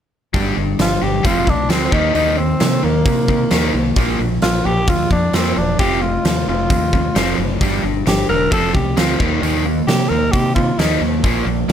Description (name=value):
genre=classic rock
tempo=132 BPM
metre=4/4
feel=straight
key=unclear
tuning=A4 = 440 Hz
part: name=crunchy overdriven guitar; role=riff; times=0.3-11.7 s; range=F2 to Eb4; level=-22 LUFS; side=right 11 dB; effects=none
part: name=overdriven electric guitar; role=riff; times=0.3-11.7 s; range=Bb2 to G4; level=-22 LUFS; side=left 12 dB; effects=none
part: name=growling fingered electric bass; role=bass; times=0.3-11.7 s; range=E1 to C3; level=-22 LUFS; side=equal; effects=overdrive
part: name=huge arena drum kit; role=drums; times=0.3-11.7 s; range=hi-hat, kick drum, snare drum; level=-19 LUFS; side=equal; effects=none
part: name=growling tenor saxophone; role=melody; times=0.8-11.0 s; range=Bb3 to Bb4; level=-20 LUFS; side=equal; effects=slapback echo
room=moderate studio ambience, RT60 0.5 s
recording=none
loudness=-14 LUFS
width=side -9 dB against mid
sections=0.3-11.7 A section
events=none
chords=0.3 G5; 1.2 F; 1.9 Eb; 4.0 Bb; 5.8 F; 7.6 G5; 8.5 F; 9.2 Eb